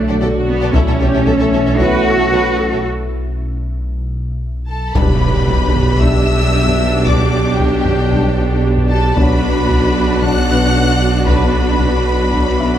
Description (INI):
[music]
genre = cinematic, hybrid orchestral and electronic film score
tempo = 114 BPM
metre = 4/4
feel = straight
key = unclear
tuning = A4 = 440 Hz
[part]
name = warm studio viola section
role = accompaniment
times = 0.0-12.8 s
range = D4 to B4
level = -20 LUFS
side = right 2 dB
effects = none
[part]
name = clear trombone section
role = sustained chords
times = 0.0-2.8 s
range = D3 to A3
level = -23 LUFS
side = right 1 dB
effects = none
[part]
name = dark French horn section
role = sustained chords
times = 0.0-12.5 s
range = F#3 to D5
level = -25 LUFS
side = left 5 dB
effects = none
[part]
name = glassy FM pad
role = sustained chords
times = 0.0-12.8 s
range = A3 to E5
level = -22 LUFS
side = left 1 dB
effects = ensemble chorus, built-in reverb
[part]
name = dark detuned saw bass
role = bass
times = 0.0-12.8 s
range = B1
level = -21 LUFS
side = equal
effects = none
[part]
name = warm studio cello section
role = bass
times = 0.0-12.8 s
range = B2 to F#4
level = -21 LUFS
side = right 2 dB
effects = none
[part]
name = felt-muted upright piano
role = texture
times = 0.0-12.8 s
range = G3 to E5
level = -28 LUFS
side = left 2 dB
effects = none
[part]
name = rich symphonic violin section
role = melody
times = 0.1-12.8 s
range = E5 to F#6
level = -23 LUFS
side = left 2 dB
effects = none
[part]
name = rich symphonic violin section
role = second line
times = 0.1-12.8 s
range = G4 to F#5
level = -25 LUFS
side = left 3 dB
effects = none
[part]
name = rich symphonic double bass section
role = bass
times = 0.1-12.8 s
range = B1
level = -21 LUFS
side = right 2 dB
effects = none
[part]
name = mellow tuba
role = bass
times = 0.2-12.8 s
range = B1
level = -22 LUFS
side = right 2 dB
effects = none
[part]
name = taiko ensemble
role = drums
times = 0.7-12.8 s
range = none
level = -20 LUFS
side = equal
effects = none
[part]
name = impact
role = sound effects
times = 5.0-7.1 s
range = none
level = -22 LUFS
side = equal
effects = none
[sound]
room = moderate scoring stage reverb, RT60 2.1 s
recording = none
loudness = -12 LUFS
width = side -10 dB against mid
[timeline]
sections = 0.0-5.0 A section; 5.0-12.8 A section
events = break 2.9-5.0; impact 5.0-7.1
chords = 0.0 D/B; 0.7 A/B; 5.0 G/B; 9.2 Bm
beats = 0.22 | 0.75 1.27 1.80 2.33 | 2.85 3.38 3.90 4.43 | 4.96 5.48 6.01 6.54 | 7.06 7.59 8.12 8.64 | 9.17 9.69 10.22 10.75 | 11.27 11.80 12.32